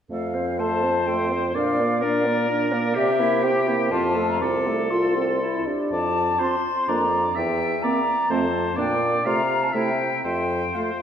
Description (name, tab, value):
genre	quick classical-period movement for wind quintet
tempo	124 BPM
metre	3/4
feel	rubato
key	F major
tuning	A4 = 442 Hz
part	concert flute	melody	0.1-11.0 s	D5 to D6	-26 LUFS	left 3 dB	none
part	clear French horn	accompaniment	0.1-10.9 s	A3 to F4	-27 LUFS	equal	none
part	clear clarinet	accompaniment	0.1-10.9 s	C4 to D5	-29 LUFS	right 5 dB	none
part	warm bassoon	bass	0.1-10.7 s	C2 to C3	-26 LUFS	right 1 dB	none
part	clear oboe	second line	0.6-11.0 s	F4 to F5	-28 LUFS	left 1 dB	none
room	wet scoring stage reverb, RT60 1.9 s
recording	heard from further back in the room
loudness	-20 LUFS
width	side -8 dB against mid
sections	0.1-11.0 A section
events	none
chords	0.1 F; 1.5 Bb; 3.0 C7; 3.9 F; 4.4 F/C; 5.4 C; 5.9 F; 6.9 Bb/F; 7.4 C7/E; 8.3 F; 8.8 Gm/Bb; 9.3 F/C; 9.7 C6; 10.2 F